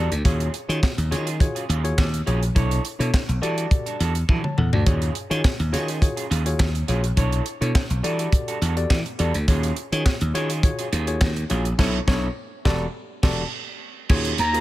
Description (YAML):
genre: early-eighties boogie funk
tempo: 104 BPM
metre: 4/4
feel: straight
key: unclear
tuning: A4 = 440 Hz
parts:
  - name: tine electric piano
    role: accompaniment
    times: 0.0-14.6 s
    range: D4 to A5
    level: -29 LUFS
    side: left 3 dB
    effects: overdrive
  - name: electric guitar through a small old amp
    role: riff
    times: 0.0-14.6 s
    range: Gb3 to C#5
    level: -32 LUFS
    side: right 6 dB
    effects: lush chorus
  - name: slap bass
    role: bass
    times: 0.0-14.6 s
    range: E1 to E3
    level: -23 LUFS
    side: equal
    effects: none
  - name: tight funk drum kit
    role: drums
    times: 0.1-14.6 s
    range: crash cymbal, handclaps, hi-hat, kick drum, snare drum, toms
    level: -22 LUFS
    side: equal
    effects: none
  - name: expressive synth lead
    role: melody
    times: 14.4-14.6 s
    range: Bb5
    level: -20 LUFS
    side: right 1 dB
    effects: chorus
room: small room reverb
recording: none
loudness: -20 LUFS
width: side -16 dB against mid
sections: 0.0-14.1 A section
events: drum fill 4.3-4.9; band accent 11.8-14.1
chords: 0.2 Ebm11; 2.6 Bm11; 3.4 Em11; 4.9 Ebm11; 7.2 Bm11; 8.0 Em11; 9.5 Ebm11; 11.8 Bm11; 12.7 Em11; 14.1 Ebm11